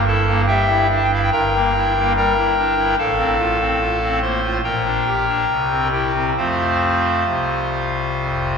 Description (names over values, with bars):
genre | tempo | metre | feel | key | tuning
classical, chorale-style piece for pipe organ | 66-72 BPM | 4/4 | rubato | F major | A4 = 440 Hz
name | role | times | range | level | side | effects
pipe organ, clarinet reed | solo | 0.0-8.6 s | F1 to C6 | -16 LUFS | equal | none
room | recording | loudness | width
wet church reverb, RT60 3.3 s | heard from further back in the room | -16 LUFS | side -6 dB against mid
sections
0.0-8.6 A section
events
none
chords
0.0 Edim/G; 3.0 F/A; 4.6 Gm/Bb; 5.5 C7; 6.4 F